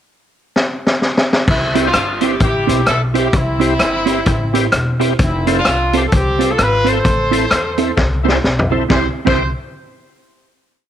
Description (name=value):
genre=ska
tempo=129 BPM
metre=4/4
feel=swing 60% on 8ths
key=C major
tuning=A4 = 440 Hz
part: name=vintage drum kit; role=drums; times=0.6-9.4 s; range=crash cymbal, hi-hat, kick drum, rim click, snare drum, toms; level=-17 LUFS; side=left 1 dB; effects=none
part: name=warm horn section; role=melody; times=1.5-9.5 s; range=C4 to C5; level=-18 LUFS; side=left 1 dB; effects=none
part: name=upright bass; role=bass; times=1.5-9.5 s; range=E1 to E2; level=-20 LUFS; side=left 1 dB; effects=none
part: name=tonewheel organ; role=stabs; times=1.7-9.4 s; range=E4 to C5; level=-24 LUFS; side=left 14 dB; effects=overdrive, chorus vibrato, slow rotary speaker
part: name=mellow electric guitar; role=accompaniment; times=1.8-9.4 s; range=C4 to C5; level=-20 LUFS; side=right 11 dB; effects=slapback echo
room=light reverb, small room ambience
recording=1960s-style stereo with parts hard left and right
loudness=-13 LUFS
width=side -10 dB against mid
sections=0.0-1.5 pickup bar; 1.5-8.9 head; 8.9-10.8 final chord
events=drum fill 0.6-1.5, 8.0-8.9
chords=0.0 N.C.; 1.5 C; 5.2 F; 7.0 Am; 8.9 C